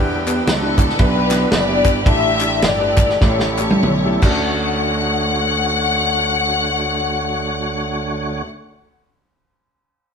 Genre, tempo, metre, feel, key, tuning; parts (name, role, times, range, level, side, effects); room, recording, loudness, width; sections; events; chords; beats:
uptempo gospel; 89-118 BPM; 4/4; swing 61% on 8ths; D major; A4 = 441 Hz
warm studio string section; melody; 0.0-8.4 s; B3 to F#5; -19 LUFS; left 4 dB
warm concert grand piano; accompaniment; 0.0-8.5 s; D2 to B4; -25 LUFS; right 1 dB
tonewheel organ; sustained chords; 0.0-8.4 s; D3 to C#5; -24 LUFS; right 3 dB; fast rotary speaker, chorus vibrato
gritty slap bass; bass; 0.0-8.4 s; F#1 to E2; -24 LUFS; equal; overdrive
warm soul drum kit; drums; 0.3-4.3 s; crash cymbal, kick drum, ride cymbal, snare drum, toms; -18 LUFS; right 1 dB
group handclap; percussion; 0.3-4.9 s; -30 LUFS; left 4 dB
moderate stone room reverb, RT60 1.0 s; band playing live in one room; -15 LUFS; side -6 dB against mid
0.0-4.5 A section; 4.5-9.9 B section
slowing down 0.0-4.5; drum fill 3.2-4.5
0.0 Em7; 2.1 A7sus4; 3.2 A7; 4.2 Dmaj7
0.48 0.99 1.52 | 2.07 2.63 3.22 3.84 | 4.49 5.17 5.85 6.52 | 7.20 7.88